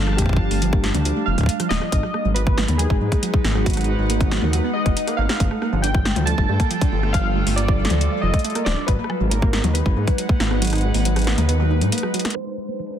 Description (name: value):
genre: IDM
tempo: 138 BPM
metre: 4/4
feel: straight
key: unclear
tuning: A4 = 439 Hz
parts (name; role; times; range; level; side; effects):
- warbly lo-fi synth keys; melody; 0.0-13.0 s; Gb4 to A5; -27 LUFS; equal; chorus, tape echo
- warbly tape-like pad; sustained chords; 0.0-13.0 s; G3 to A5; -27 LUFS; right 1 dB; chorus, built-in reverb, sidechain pumping
- warbly dusty pluck; arpeggios; 0.0-13.0 s; F3 to Ab4; -27 LUFS; right 4 dB; chorus, tape echo
- dark detuned saw bass; bass; 0.0-11.9 s; D1 to Ab2; -21 LUFS; equal; none
- electro analog drum machine; drums; 0.1-13.0 s; hi-hat, rim click, snare drum, toms; -26 LUFS; left 2 dB; low-pass filter on hats, low-pass filter on snare, low-pass filter on toms
- electronic kick drum; drums; 0.2-10.4 s; none; -19 LUFS; equal; none
room: digital ambience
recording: dense, heavily limited modern master, low-pass filter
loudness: -18 LUFS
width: side -10 dB against mid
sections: 0.0-12.4 A section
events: kick drops out 10.6-12.4; drum fill 12.1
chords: 0.0 G7sus2; 1.9 Abm9; 5.4 G7sus2; 8.9 Abm9; 12.4 Gm9